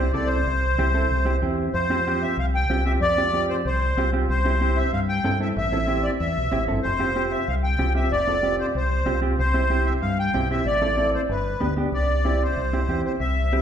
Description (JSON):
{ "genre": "latin, cumbia", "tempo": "188 BPM", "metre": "4/4", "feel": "straight", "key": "C major", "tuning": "A4 = 440 Hz", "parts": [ { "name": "accordion", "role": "melody", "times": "0.0-13.6 s", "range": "B4 to G5", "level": "-24 LUFS", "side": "equal", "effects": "light tremolo tuning" }, { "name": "mellow electric guitar", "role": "accompaniment", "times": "0.0-13.6 s", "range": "B3 to A4", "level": "-27 LUFS", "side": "right 2 dB", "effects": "none" }, { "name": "deep dub fingered electric bass", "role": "bass", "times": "0.0-13.6 s", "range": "F1 to G2", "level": "-24 LUFS", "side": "equal", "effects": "none" } ], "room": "wet recital hall reverb, RT60 1.6 s", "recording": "recorded in a church or concert hall, lossy compression artefacts", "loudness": "-20 LUFS", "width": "side -8 dB against mid", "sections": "0.0-1.7 A section; 1.7-11.9 B section; 11.9-13.6 C section", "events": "none", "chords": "0.0 C; 1.7 Fsus2; 4.3 C; 5.6 Am; 6.8 Fsus2; 9.4 C; 10.7 Am; 11.3 G; 11.9 C" }